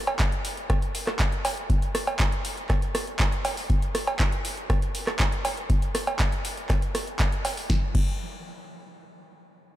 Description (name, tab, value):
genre	house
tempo	120 BPM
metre	4/4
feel	straight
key	none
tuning	none
part	booming analog drum machine	drums	0.1-8.0 s	cowbell, crash cymbal, handclaps, hi-hat, rim click, snare drum	-28 LUFS	right 1 dB	none
part	electronic kick drum	drums	0.2-8.0 s	none	-24 LUFS	equal	none
room	light reverb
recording	none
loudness	-23 LUFS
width	side -14 dB against mid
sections	0.0-7.7 A section; 7.7-9.7 B section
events	none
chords	none